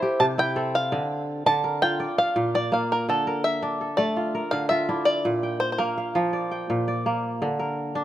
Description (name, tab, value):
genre	west african traditional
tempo	111 BPM (dotted quarters)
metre	12/8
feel	straight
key	unclear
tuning	A4 = 439 Hz
part	bluegrass banjo	melody	0.0-6.3 s	A4 to A5	-24 LUFS	equal	none
part	kora	arpeggios	0.0-8.0 s	Bb2 to G5	-25 LUFS	equal	none
room	light reverb, studio reverb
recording	rough home demo mix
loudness	-22 LUFS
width	side -12 dB against mid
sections	0.0-3.1 A section; 3.1-8.0 B section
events	five-string banjo solo 0.0-3.1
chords	0.0 C; 0.9 Dm; 2.0 Bb; 3.1 Dm; 5.2 Bb; 7.4 N.C.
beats	0.38 | 0.92 1.46 2.00 2.54 | 3.08 3.62 4.16 4.70 | 5.25 5.79 6.33 6.87 | 7.42 7.96